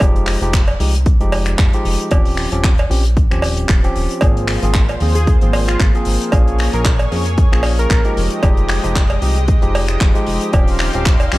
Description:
nu-disco, nu disco; 114 BPM; 4/4; swing 55% on 16ths; A4 = 440 Hz
barky tine electric piano; accompaniment; 0.0-11.4 s; F3 to Ab4; -22 LUFS; equal; overdrive
chorused synth bass; bass; 0.0-11.4 s; Eb1 to F2; -18 LUFS; equal
damped 70s drum kit; drums; 0.0-11.4 s; finger snaps, handclaps, hi-hat; -23 LUFS; left 1 dB; studio reverb
electronic kick drum; drums; 0.0-11.2 s; -14 LUFS; equal; studio reverb
cowbell; percussion; 0.0-11.3 s; -23 LUFS; right 2 dB
lush unison pad; sustained chords; 4.2-11.4 s; Ab3 to F5; -26 LUFS; equal; chorus, sidechain pumping
wide unison lead; melody; 5.2-8.2 s; F4 to Bb4; -26 LUFS; equal; cassette tape, tape echo
small room ambience; -13 LUFS; side -18 dB against mid
0.0-11.4 A section
0.0 Fm9; 2.1 Eb13; 4.2 Ab69; 6.3 Bbm7; 8.2 Fm9; 10.5 Eb13
| 0.01 0.54 1.06 1.59 | 2.12 2.64 3.17 3.69 | 4.22 4.75 5.27 5.80 | 6.33 6.85 7.38 7.91 | 8.43 8.96 9.48 10.01 | 10.54 11.06

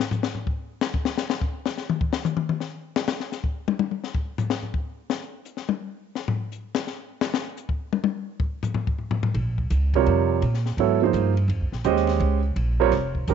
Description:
modal jazz; 169 BPM; 3/4; swing 65% on 8ths; Bb dorian; A4 = 440 Hz
compact cocktail drum kit; drums; 0.0-13.3 s; hi-hat, kick drum, ride cymbal, snare drum, toms; -26 LUFS; left 5 dB
upright bass; bass; 9.3-13.3 s; F1 to Bb2; -23 LUFS; right 1 dB
warm grand piano; accompaniment; 10.0-13.3 s; C3 to Eb5; -21 LUFS; right 11 dB
light reverb; 1960s-style stereo, nothing above 7.8 kHz; -23 LUFS; side -7 dB against mid
0.0-9.4 A section; 9.4-13.3 B section
drum solo 0.0-9.4
0.0 N.C.; 9.4 Bbm7
0.12 0.47 | 0.83 1.18 1.54 | 1.89 2.25 2.60 | 2.96 3.31 3.67 | 4.02 4.38 4.73 | 5.09 5.44 5.80 | 6.15 6.51 6.86 | 7.22 7.57 7.93 | 8.29 8.64 9.00 | 9.35 9.71 10.06 | 10.42 10.78 11.13 | 11.49 11.84 12.20 | 12.56 12.91 13.27

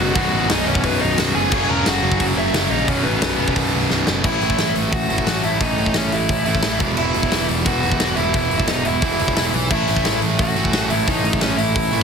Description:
punk rock; 176 BPM; 4/4; straight; A4 = 440 Hz
dark smooth lead guitar; melody; 0.0-12.0 s; B3 to A#5; -22 LUFS; equal; overdrive, digital delay
distorted electric guitar; riff; 0.0-12.0 s; B1 to A3; -24 LUFS; right 12 dB; overdrive
heavy high-gain guitar; riff; 0.0-4.2 s; B1 to F#3; -25 LUFS; left 1 dB; distortion
tight distorted guitar; riff; 0.0-12.0 s; B1 to A3; -26 LUFS; left 12 dB; distortion
fuzz picked electric bass; bass; 0.0-12.0 s; B0 to B1; -24 LUFS; equal; overdrive
big rock drum kit; drums; 0.2-12.0 s; crash cymbal, hi-hat, kick drum, snare drum; -22 LUFS; left 1 dB
little or no reverb; heavily compressed radio sound; -16 LUFS; side -6 dB against mid
0.0-4.2 A section; 4.2-12.0 B section
drum fill 3.9-4.2
0.0 B; 1.5 F#; 2.9 B5; 4.2 A5; 6.8 E5; 9.7 A5
| 0.16 0.50 0.84 1.18 | 1.52 1.86 2.20 2.54 | 2.88 3.22 3.56 3.91 | 4.25 4.59 4.93 5.27 | 5.61 5.95 6.29 6.64 | 6.98 7.32 7.66 8.00 | 8.34 8.69 9.03 9.37 | 9.71 10.05 10.39 10.73 | 11.07 11.42 11.76

